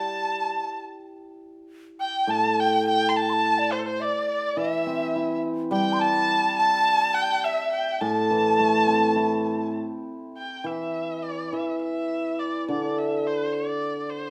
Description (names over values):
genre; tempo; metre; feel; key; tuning
chinese traditional, Chinese chamber ensemble; 104 BPM; 4/4; rubato; A yu mode; A4 = 440 Hz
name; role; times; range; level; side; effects
dark erhu; melody; 0.0-14.3 s; A4 to C6; -29 LUFS; equal; none
mellow hollow large dizi; second line; 0.0-9.7 s; C5 to C6; -28 LUFS; equal; none
hammered dulcimer; accompaniment; 0.0-14.3 s; A2 to E4; -29 LUFS; equal; none
room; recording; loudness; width
moderate recital hall reverb, RT60 1.6 s; close, detailed microphones; -24 LUFS; mono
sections
0.0-1.1 A section; 1.1-10.4 B section; 10.4-14.3 A section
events
none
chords
none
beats
0.49 | 1.10 1.69 2.29 2.87 | 3.44 4.01 4.59 5.16 | 5.73 6.30 6.87 7.45 | 8.02 8.59 9.17 9.77 | 10.37 10.96 11.54 12.11 | 12.69 13.26 13.83